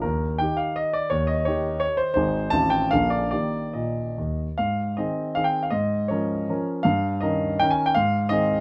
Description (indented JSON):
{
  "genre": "classical, romantic triple-time dance for piano with dotted rhythms",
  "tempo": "135-184 BPM",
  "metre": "3/4",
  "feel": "rubato",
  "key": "Eb major, Ab major from 4.6 s",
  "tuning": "A4 = 441 Hz",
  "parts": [
    { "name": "warm grand piano", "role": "solo", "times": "0.0-8.6 s", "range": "Ab1 to A5", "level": "-24 LUFS", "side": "equal", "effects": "none" }
  ],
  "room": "moderate small room reverb, RT60 0.6 s",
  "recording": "none",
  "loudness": "-24 LUFS",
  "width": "mono",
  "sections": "0.0-4.6 A section; 4.6-8.6 B section",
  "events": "none",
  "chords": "0.0 Eb; 2.2 Ab; 2.5 F7/A; 2.9 Bb7; 3.3 Eb; 4.6 Ab; 5.7 Bbm7/Ab; 6.8 Eb7/G; 7.9 Ab",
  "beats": "| 0.03 0.41 0.77 | 1.11 1.48 1.83 | 2.16 2.52 2.90 | 3.31 3.73 4.17 | 4.57 4.97 5.36 | 5.72 6.09 6.49 | 6.85 7.22 7.60 | 7.95 8.30"
}